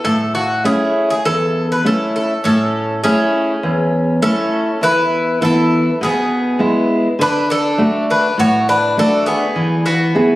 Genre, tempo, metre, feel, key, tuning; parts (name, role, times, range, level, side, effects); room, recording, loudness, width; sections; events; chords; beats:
greek folk; 101 BPM; 4/4; straight; A major; A4 = 441 Hz
Greek bouzouki; melody; 0.0-10.4 s; F#4 to C#5; -18 LUFS; equal
fingerpicked steel-string acoustic guitar; accompaniment; 0.0-10.4 s; E2 to G#4; -16 LUFS; equal
Greek bouzouki; second line; 2.4-10.4 s; B3 to F#4; -21 LUFS; left 1 dB
light reverb; recorded on a phone in the room, studio reverb, compression; -13 LUFS; side -17 dB against mid
0.0-2.4 A section; 2.4-10.4 A section
0.0 A; 4.8 E; 7.2 D; 9.5 E
| 0.04 0.64 1.24 1.84 | 2.44 3.03 3.63 4.22 | 4.82 5.41 6.01 6.60 | 7.19 7.78 8.37 8.96 | 9.55 10.13